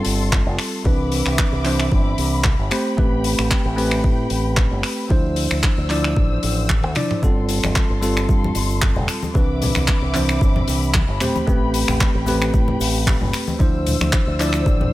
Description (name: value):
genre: nu-disco, nu disco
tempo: 113 BPM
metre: 4/4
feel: straight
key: G mixolydian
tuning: A4 = 440 Hz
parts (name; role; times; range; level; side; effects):
- bell-like tine electric piano; accompaniment; 0.0-14.9 s; E3 to D5; -23 LUFS; right 1 dB; digital delay
- muted studio string section; sustained chords; 0.0-14.9 s; A4 to E6; -29 LUFS; left 2 dB; sidechain pumping
- tight funk drum kit; drums; 0.0-14.6 s; finger snaps, handclaps, hi-hat, toms; -24 LUFS; left 1 dB; none
- fingered electric bass with an envelope filter; bass; 0.1-14.9 s; F1 to A2; -22 LUFS; equal; none
- electronic kick drum; drums; 0.3-14.8 s; none; -18 LUFS; equal; overdrive
- cabasa and congas; percussion; 7.2-14.9 s; none; -27 LUFS; left 2 dB; none
room: small room ambience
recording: none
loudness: -16 LUFS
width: side -16 dB against mid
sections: 0.0-14.9 A section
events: drum fill 6.7-7.2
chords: 0.0 G9sus4; 0.9 Cmaj9; 2.7 Am9; 5.1 Dm9; 7.2 G9sus4; 9.4 Cmaj9; 11.2 Am9; 13.6 Dm9